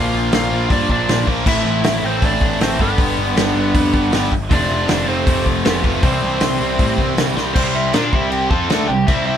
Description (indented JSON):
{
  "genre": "punk rock",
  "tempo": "158 BPM",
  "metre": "4/4",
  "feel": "straight",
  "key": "C major",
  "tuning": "A4 = 440 Hz",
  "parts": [
    { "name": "biting lead guitar", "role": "melody", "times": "0.0-9.4 s", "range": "B3 to A5", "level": "-22 LUFS", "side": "right 1 dB", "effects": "overdrive" },
    { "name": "fuzz guitar", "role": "riff", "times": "0.0-9.4 s", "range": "G2 to Bb4", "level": "-23 LUFS", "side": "equal", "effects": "distortion" },
    { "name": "overdriven electric guitar", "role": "riff", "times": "0.0-9.4 s", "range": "F2 to Bb4", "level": "-20 LUFS", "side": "equal", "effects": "none" },
    { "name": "growling picked electric bass", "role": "bass", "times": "0.0-9.4 s", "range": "F1 to Bb2", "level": "-24 LUFS", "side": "equal", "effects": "overdrive" },
    { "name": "loose indie drum kit", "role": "drums", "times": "0.3-9.2 s", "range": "crash cymbal, hi-hat, kick drum, snare drum", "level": "-19 LUFS", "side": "equal", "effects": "none" }
  ],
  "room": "light reverb",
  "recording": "band playing live in one room",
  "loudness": "-14 LUFS",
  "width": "side -9 dB against mid",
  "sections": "0.0-7.6 A section; 7.6-9.4 B section",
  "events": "drum fill 7.4",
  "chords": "0.0 Bb; 1.5 Am; 2.8 G; 4.5 F; 6.0 C"
}